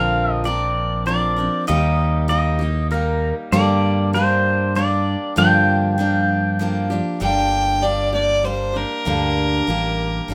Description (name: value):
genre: honky-tonk and classic country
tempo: 98 BPM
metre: 3/4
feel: straight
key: G minor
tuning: A4 = 440 Hz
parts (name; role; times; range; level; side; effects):
- pedal steel guitar; melody; 0.0-6.9 s; Bb4 to G5; -23 LUFS; equal; none
- picked steel-string acoustic guitar; accompaniment; 0.0-10.3 s; G2 to Bb4; -25 LUFS; equal; none
- fingered electric bass; bass; 0.0-10.3 s; G1 to G2; -23 LUFS; equal; none
- clear fiddle; second line; 7.2-10.3 s; Bb4 to G5; -22 LUFS; equal; none
room: light reverb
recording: none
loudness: -19 LUFS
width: mono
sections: 0.0-7.2 A section; 7.2-10.3 B section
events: fiddle solo 7.2-10.3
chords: 0.0 Bbadd9; 1.7 Eb; 3.5 Gm; 5.4 Gm7; 7.2 Gm